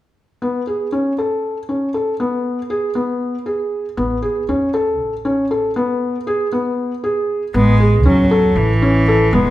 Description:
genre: contemporary instrumental, contemporary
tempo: 236 BPM (eighths)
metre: 7/8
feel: straight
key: A major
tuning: A4 = 439 Hz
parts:
  - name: felt-muted upright piano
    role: arpeggios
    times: 0.4-9.5 s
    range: B3 to A4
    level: -17 LUFS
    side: left 1 dB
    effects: none
  - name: upright bass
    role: bass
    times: 4.0-9.5 s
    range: E1 to E2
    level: -17 LUFS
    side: equal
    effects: none
  - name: rich cello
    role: melody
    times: 7.6-9.5 s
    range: E3 to G#3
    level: -16 LUFS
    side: right 1 dB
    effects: none
room: moderate recital hall reverb, RT60 1.5 s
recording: minimal, uncompressed stereo recording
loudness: -15 LUFS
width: side -14 dB against mid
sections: 0.4-7.5 A section; 7.5-9.5 B section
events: none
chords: 0.4 Amaj9; 2.2 G#m/B; 4.0 A; 5.8 G#m/B; 7.5 Amaj7

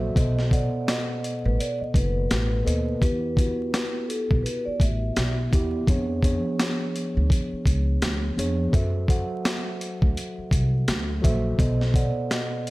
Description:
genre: hip hop, boom-bap hip-hop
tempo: 84 BPM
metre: 4/4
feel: swing 61% on 16ths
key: unclear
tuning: A4 = 435 Hz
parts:
  - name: mellow tine electric piano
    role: accompaniment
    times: 0.0-12.7 s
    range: B2 to F#5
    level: -29 LUFS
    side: right 1 dB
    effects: slow stereo tremolo, high-pass filter, low-pass filter
  - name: upright bass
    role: bass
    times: 0.0-12.1 s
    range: F#1 to F#2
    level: -25 LUFS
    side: equal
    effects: none
  - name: boom bap sampler-style drum kit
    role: drums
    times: 0.2-12.7 s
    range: hi-hat, kick drum, snare drum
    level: -24 LUFS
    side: equal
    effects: none
  - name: vibraphone with medium mallets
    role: melody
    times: 0.4-5.3, 11.8-12.7 s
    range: A4 to E5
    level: -31 LUFS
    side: left 1 dB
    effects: high-pass filter, low-pass filter, digital delay
room: light reverb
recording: vinyl crackle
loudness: -22 LUFS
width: side -20 dB against mid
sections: 0.0-12.7 A section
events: none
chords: 0.2 B7b9; 3.0 Em; 5.9 C#7b9; 8.7 F#m7b5; 11.6 B7b9

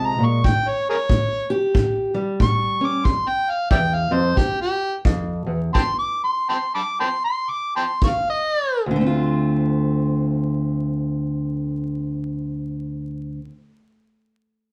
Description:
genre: acoustic country blues, solo or duo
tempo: 69-92 BPM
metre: 4/4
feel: swing 60% on 8ths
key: D minor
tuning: A4 = 438 Hz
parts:
  - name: overdriven harmonica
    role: melody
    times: 0.0-8.8 s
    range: G4 to D6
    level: -23 LUFS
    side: equal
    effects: none
  - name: fingerpicked steel-string acoustic guitar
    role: accompaniment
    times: 0.0-13.6 s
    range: D2 to G4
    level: -24 LUFS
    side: equal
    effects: none
  - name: kick drum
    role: drums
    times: 0.4-8.2 s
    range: none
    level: -23 LUFS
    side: equal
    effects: none
room: wet small room reverb, RT60 0.5 s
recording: heard from further back in the room, vinyl crackle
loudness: -22 LUFS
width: mono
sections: 0.0-8.9 A section; 8.9-12.3 B section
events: harmonica solo 0.0-8.9; slowing down 3.1-8.9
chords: 0.5 A7; 3.1 Dm; 4.4 Em; 5.7 N.C.; 8.9 Dm7

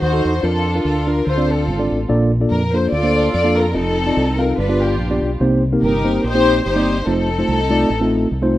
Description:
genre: uptempo gospel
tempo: 145 BPM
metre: 4/4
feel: swing 55% on 8ths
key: Bb major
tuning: A4 = 441 Hz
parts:
  - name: dark studio string section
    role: melody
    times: 0.0-8.5 s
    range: B3 to D5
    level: -20 LUFS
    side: left 1 dB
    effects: tape echo
  - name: mellow tine electric piano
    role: accompaniment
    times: 0.0-8.6 s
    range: G2 to F5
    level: -18 LUFS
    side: equal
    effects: medium stereo tremolo
  - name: fingered electric bass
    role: bass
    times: 0.0-8.6 s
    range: F1 to F2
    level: -21 LUFS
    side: equal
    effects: none
room: light reverb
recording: rough home demo mix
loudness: -15 LUFS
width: side -14 dB against mid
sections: 0.0-8.6 A section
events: none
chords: 0.4 Bb/F; 1.3 Dm7; 2.1 Bbmaj7; 3.7 F7; 4.6 G7; 5.4 Cm7; 7.1 F7

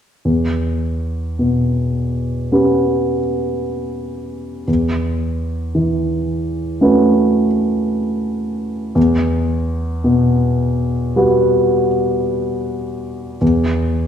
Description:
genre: classical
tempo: 55 BPM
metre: 4/4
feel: uneven beats, rubato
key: E dorian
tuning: A4 = 438 Hz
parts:
  - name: dark baby grand piano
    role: accompaniment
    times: 0.3-14.1 s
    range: E2 to B4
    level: -15 LUFS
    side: equal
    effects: none
room: wet scoring stage reverb, RT60 1.6 s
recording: dark, warm production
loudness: -15 LUFS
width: side -9 dB against mid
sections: 0.3-14.1 A section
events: none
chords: 0.3 Em6; 4.7 A69/E; 9.0 Emadd9; 13.4 N.C.

